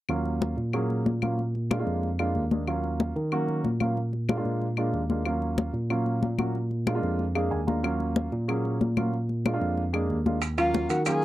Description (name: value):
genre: Afro-Cuban jazz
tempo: 186 BPM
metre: 4/4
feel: straight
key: Eb minor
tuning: A4 = 439 Hz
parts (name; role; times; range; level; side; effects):
- warm baby grand piano; accompaniment; 0.1-11.2 s; Gb3 to Bb5; -30 LUFS; right 1 dB; none
- overdriven tine electric piano; bass; 0.1-11.2 s; Eb2 to Eb3; -28 LUFS; equal; none
- claves; percussion; 0.1-11.2 s; none; -34 LUFS; left 9 dB; none
- congas; percussion; 0.1-11.2 s; none; -29 LUFS; left 4 dB; none
- maracas; percussion; 10.4-11.2 s; none; -41 LUFS; left 8 dB; none
- timbales; percussion; 10.4-11.2 s; none; -35 LUFS; right 10 dB; none
- warm alto saxophone; melody; 10.6-11.2 s; F4 to Ab4; -26 LUFS; equal; none
- breathy bright concert flute; second line; 10.6-11.2 s; F5 to Ab5; -33 LUFS; left 7 dB; none
room: little or no reverb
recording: dry, close 1970s-style studio recording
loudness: -25 LUFS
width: side -15 dB against mid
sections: 0.1-10.4 A section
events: grand piano fill 7.2-7.8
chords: 0.1 Ebm7; 1.4 Bb7; 2.7 Ebm7; 4.0 Bb7; 5.3 Ebm7; 6.5 Bb7; 7.8 Ebm7; 9.1 Bb7; 10.4 Ebm7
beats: | 0.09 0.41 0.74 1.06 | 1.38 1.71 2.03 2.35 | 2.67 3.00 3.32 3.64 | 3.97 4.29 4.61 4.93 | 5.26 5.58 5.90 6.22 | 6.55 6.87 7.19 7.52 | 7.84 8.16 8.48 8.81 | 9.13 9.45 9.78 10.10 | 10.42 10.74 11.06